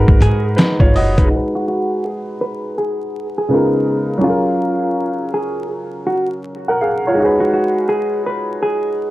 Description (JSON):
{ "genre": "lo-fi hip hop", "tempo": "82 BPM", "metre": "4/4", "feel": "swing 65% on 16ths", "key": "G# dorian", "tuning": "A4 = 442 Hz", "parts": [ { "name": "bright upright piano", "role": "accompaniment", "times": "0.0-9.1 s", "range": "C#3 to F#5", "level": "-18 LUFS", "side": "equal", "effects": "cassette tape, low-pass filter" }, { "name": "upright bass", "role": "bass", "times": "0.0-1.3 s", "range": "F#1 to G#2", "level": "-15 LUFS", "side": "equal", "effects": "none" }, { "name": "trip hop sampler-style drum kit", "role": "drums", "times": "0.1-1.3 s", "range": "hi-hat, kick drum, snare drum", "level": "-13 LUFS", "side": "equal", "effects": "overdrive" }, { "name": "vintage hollow-body jazz guitar", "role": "melody", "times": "0.2-9.1 s", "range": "E#4 to B4", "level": "-20 LUFS", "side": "equal", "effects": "low-pass filter" } ], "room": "moderate studio reverb, RT60 0.5 s", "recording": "dark, warm production, vinyl crackle", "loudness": "-15 LUFS", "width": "side -16 dB against mid", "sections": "0.0-1.3 A section; 1.3-9.1 B section", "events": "filter sweep 1.3-9.1", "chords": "0.0 G#m7; 3.5 C#13; 4.2 F#maj7; 7.2 G#m7" }